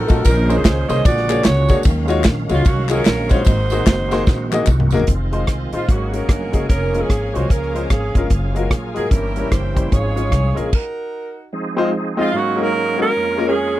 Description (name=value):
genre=uptempo gospel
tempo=149 BPM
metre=4/4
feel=swing 61% on 8ths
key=Db major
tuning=A4 = 441 Hz
part: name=bright saxophone section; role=melody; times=0.0-13.8 s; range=Bb3 to Eb5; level=-22 LUFS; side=right 3 dB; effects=none
part: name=bright tonewheel organ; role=sustained chords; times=0.0-13.8 s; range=F2 to F5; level=-26 LUFS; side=right 4 dB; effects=fast rotary speaker, chorus vibrato
part: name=upright bass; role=bass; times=0.0-10.7 s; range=F1 to Eb2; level=-20 LUFS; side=equal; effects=none
part: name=clear baby grand piano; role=accompaniment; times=0.1-13.5 s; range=G2 to Eb5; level=-22 LUFS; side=left 4 dB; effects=none
part: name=modern studio drum kit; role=drums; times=0.1-10.8 s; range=crash cymbal, hi-hat, kick drum, ride cymbal, rim click, snare drum, toms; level=-15 LUFS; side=equal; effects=none
part: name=tambourine and handclaps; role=percussion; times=0.1-5.0 s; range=none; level=-31 LUFS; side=left 4 dB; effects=none
part: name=warm studio string section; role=sustained chords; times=5.1-10.7 s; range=Db4 to Ab5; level=-33 LUFS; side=left 1 dB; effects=none
room=little or no reverb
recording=dry, close 1970s-style studio recording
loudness=-15 LUFS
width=side -15 dB against mid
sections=0.0-5.1 A section; 5.1-11.5 B section; 11.5-13.8 A section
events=drum fill 4.3-5.1; stop 10.7-11.5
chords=0.2 Bbm11; 1.1 Bb7alt; 1.9 Ebm11; 3.5 Ab9; 5.1 Fm7; 5.9 Ab9sus4; 6.7 Db6/F; 8.3 Gbmaj9; 9.1 Gdim7; 9.9 Db/Ab; 10.7 Ebm; 11.5 Fm7; 12.3 Ab9sus4; 13.1 Db6/F